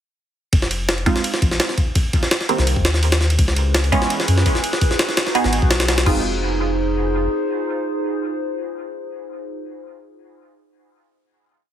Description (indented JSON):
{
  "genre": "drum and bass, jungle",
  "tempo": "168 BPM",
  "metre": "4/4",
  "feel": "straight",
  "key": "unclear",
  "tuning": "A4 = 439 Hz",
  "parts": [
    { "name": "soft dub sub bass", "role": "bass", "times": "0.5-7.3 s", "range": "F1 to Gb2", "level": "-20 LUFS", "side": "equal", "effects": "tube saturation" },
    { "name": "jungle sampler-style drum kit", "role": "drums", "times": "0.5-6.1 s", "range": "crash cymbal, kick drum, ride cymbal, snare drum", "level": "-18 LUFS", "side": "equal", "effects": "studio reverb" },
    { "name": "filtered dub chord stab", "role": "stabs", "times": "1.1-9.5 s", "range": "Eb3 to Ab4", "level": "-24 LUFS", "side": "right 3 dB", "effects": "phaser, wide subtle chorus, dub echo" },
    { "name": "warbly tape-like pad", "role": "sustained chords", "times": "3.4-9.5 s", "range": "Db4 to C5", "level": "-24 LUFS", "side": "equal", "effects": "chorus, built-in reverb" }
  ],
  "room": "light reverb",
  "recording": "heavily compressed radio sound",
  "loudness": "-16 LUFS",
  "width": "side -10 dB against mid",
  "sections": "0.5-6.2 drop; 6.2-9.1 final hit",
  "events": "drop 0.5-6.2",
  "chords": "0.5 Fm7; 2.0 Cm7; 3.4 Dbm7; 4.8 Abm7; 6.1 Fm7"
}